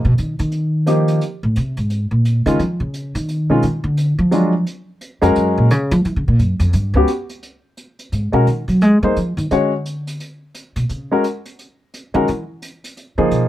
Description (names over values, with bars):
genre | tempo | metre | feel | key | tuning
jazz piano trio | 174 BPM | 4/4 | swing 62% on 8ths | unclear | A4 = 440 Hz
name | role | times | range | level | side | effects
upright bass | bass | 0.0-13.5 s | C#2 to Ab3 | -16 LUFS | equal | none
hi-hat | drums | 0.2-13.4 s | none | -37 LUFS | right 2 dB | none
warm upright piano | melody | 0.9-13.5 s | Eb3 to C#5 | -16 LUFS | left 1 dB | none
room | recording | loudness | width
little or no reverb | close, detailed microphones | -15 LUFS | side -14 dB against mid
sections
0.0-7.4 A section; 7.4-13.5 A section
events
upright bass solo 0.0-13.5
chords
0.0 B; 0.5 Ebadd9; 1.2 Ab; 1.9 Bbm7; 3.3 F7(b5, no3) (rootless); 4.0 Ddim; 4.7 Gbmaj9/F; 6.1 Bbm; 6.7 G(b5, no3)/C#; 7.4 Abm7; 8.8 Fm9; 9.5 Dmaj7#11; 10.2 Bsus2; 11.6 N.C.; 13.0 Bmaj9